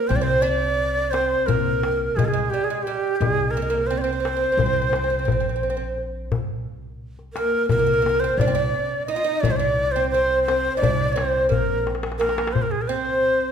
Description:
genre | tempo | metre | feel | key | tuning
Turkish makam ensemble | 174 BPM (eighths) | 9/8 | straight | C makam ussak | A4 = 440 Hz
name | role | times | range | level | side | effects
breathy bright ney | melody | 0.0-13.5 s | G4 to Eb5 | -22 LUFS | equal | none
oud | second line | 0.0-13.5 s | G3 to F4 | -26 LUFS | right 3 dB | none
upright bass | bass | 0.1-13.5 s | Bb1 to C2 | -28 LUFS | left 1 dB | none
darbuka | percussion | 0.1-13.5 s | none | -26 LUFS | left 3 dB | none
room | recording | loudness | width
wet recital hall reverb, RT60 1.4 s | minimal, uncompressed stereo recording | -19 LUFS | side -7 dB against mid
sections
0.1-13.5 A section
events
drum fill 11.9-12.6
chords
none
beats
| 0.10 0.45 0.79 1.14 1.48 1.83 2.17 2.52 2.87 | 3.21 3.56 3.90 4.25 4.59 4.94 5.28 5.63 5.97 | 6.32 6.67 7.01 7.36 7.71 8.05 8.40 8.74 9.09 | 9.44 9.78 10.13 10.47 10.82 11.17 11.51 11.86 12.21 | 12.55 12.90 13.24

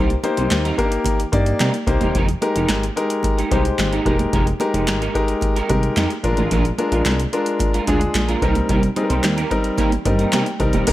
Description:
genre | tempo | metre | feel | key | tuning
early-eighties boogie funk | 110 BPM | 4/4 | straight | unclear | A4 = 440 Hz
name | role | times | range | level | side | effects
clear concert grand piano | accompaniment | 0.0-10.9 s | G3 to Bb5 | -21 LUFS | left 2 dB | none
clean electric guitar | riff | 0.0-10.9 s | G3 to C5 | -26 LUFS | right 3 dB | ensemble chorus
plucky analog bass | bass | 0.0-10.9 s | E1 to C3 | -21 LUFS | equal | none
booming analog drum machine | drums | 0.1-10.9 s | crash cymbal, handclaps, hi-hat, kick drum, snare drum | -22 LUFS | equal | overdrive, gated reverb
congas | percussion | 0.2-10.9 s | none | -30 LUFS | right 5 dB | none
lush unison pad | sustained chords | 10.9 s | none | barely audible | none | none
room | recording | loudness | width
light reverb | none | -16 LUFS | side -15 dB against mid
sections
0.0-10.9 A section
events
grand piano fill 9.8-10.9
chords
0.0 Cm7; 2.1 Fm11; 6.2 Bb7; 8.4 Cm7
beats
0.51 1.06 1.60 | 2.15 2.69 3.24 3.79 | 4.33 4.88 5.42 5.97 | 6.51 7.06 7.60 8.15 | 8.70 9.24 9.79 10.33 | 10.88

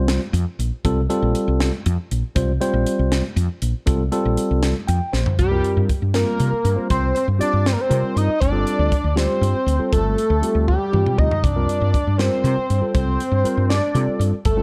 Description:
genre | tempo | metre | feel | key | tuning
electric jazz fusion | 79 BPM (dotted quarters) | 6/8 | straight | unclear | A4 = 440 Hz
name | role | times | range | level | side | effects
tine electric piano | accompaniment | 0.0-14.6 s | G3 to G5 | -26 LUFS | equal | none
woody fretless electric bass | bass | 0.0-14.6 s | G1 to C3 | -22 LUFS | equal | none
crisp fusion drum kit | drums | 0.1-14.6 s | hi-hat, kick drum, snare drum, toms | -26 LUFS | equal | none
unison lead | melody | 5.4-14.6 s | G4 to Eb5 | -25 LUFS | equal | slapback echo
brilliant trombone | second line | 5.4-14.6 s | G3 to Eb4 | -30 LUFS | equal | none
room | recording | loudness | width
studio ambience | dark, warm production | -20 LUFS | mono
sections
0.0-5.4 A section; 5.4-14.6 B section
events
tine electric piano fill 4.6-5.4; drum fill 5.1, 10.7-11.4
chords
0.0 C7sus4; 5.4 C5; 8.4 G9sus4; 11.4 Csus2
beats
0.08 | 0.84 1.60 | 2.35 3.11 | 3.87 4.63 | 5.38 6.14 | 6.90 7.65 | 8.41 9.17 | 9.92 10.68 | 11.44 12.19 | 12.94 13.70 | 14.45

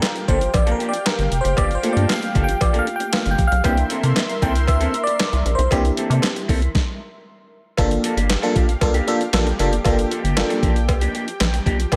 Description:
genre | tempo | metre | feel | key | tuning
early-eighties boogie funk | 116 BPM | 4/4 | straight | G dorian | A4 = 442 Hz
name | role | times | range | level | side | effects
FM electric piano | accompaniment | 0.0-12.0 s | A3 to G5 | -25 LUFS | equal | chorus, phaser
lush unison pad | sustained chords | 0.0-12.0 s | G4 to C6 | -32 LUFS | equal | chorus
electric guitar through a small old amp | riff | 0.0-12.0 s | E3 to A4 | -30 LUFS | equal | subtle chorus
crisp 8-bit digital drum machine | drums | 0.0-12.0 s | handclaps, hi-hat, kick drum, snare drum | -25 LUFS | equal | gated reverb
cowbell | percussion | 0.0-12.0 s | none | -32 LUFS | equal | none
rubbery square bass | bass | 0.3-12.0 s | F1 to C3 | -22 LUFS | equal | none
room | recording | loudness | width
light reverb | none | -19 LUFS | mono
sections
0.0-7.8 A section; 7.8-12.0 B section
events
FM electric piano solo 0.0-7.8; stop 6.8-7.8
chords
0.0 Gm7; 3.6 C7; 7.8 Gm7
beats
0.03 0.54 1.06 | 1.58 2.10 2.61 3.13 | 3.65 4.16 4.68 5.20 | 5.71 6.23 6.75 7.27 | 7.78 8.30 8.82 9.34 | 9.85 10.37 10.89 11.40 | 11.92

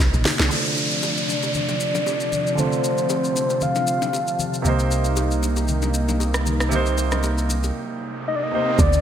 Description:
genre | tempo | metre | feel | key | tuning
amapiano | 116 BPM | 4/4 | swing 55% on 16ths | D phrygian | A4 = 440 Hz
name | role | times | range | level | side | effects
warm analog pad | sustained chords | 0.0-8.7 s | C3 to Eb4 | -28 LUFS | left 1 dB | chorus, sidechain pumping, low-pass filter
deep log drum bass | bass | 0.0-0.5, 8.8-9.0 s | Bb1 to D2 | -20 LUFS | equal | none
afro-pop drum kit | drums | 0.0-9.0 s | hi-hat, kick drum, rim click, shaker, snare drum | -25 LUFS | equal | gated reverb
congas and bongos | percussion | 0.3-8.9 s | none | -32 LUFS | left 6 dB | none
soft octave-layered synth lead | melody | 0.5-4.4, 8.3-9.0 s | C5 to F5 | -24 LUFS | left 2 dB | chorus, low-pass filter, digital delay
clear concert grand piano | accompaniment | 0.5-8.8 s | C3 to D5 | -27 LUFS | right 5 dB | wide subtle chorus, low-pass filter
downlifter, riser and impact | sound effects | 0.5-9.0 s | none | -28 LUFS | equal | none
punchy sub bass | bass | 4.7-7.7 s | C2 | -22 LUFS | equal | none
room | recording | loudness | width
light reverb, digital ambience | bright 1980s-style digital production | -19 LUFS | side -9 dB against mid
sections
0.5-8.8 A section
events
drum fill 0.0-0.5; filter sweep 0.5-8.8; riser 7.7-8.8; break 7.8-8.8; impact 8.8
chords
0.0 Cm7; 0.5 Dm7; 4.7 Cm7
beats
0.00 | 0.51 1.03 1.55 2.06 | 2.58 3.10 3.62 4.13 | 4.65 5.17 5.68 6.20 | 6.72 7.24 7.75 8.27 | 8.79

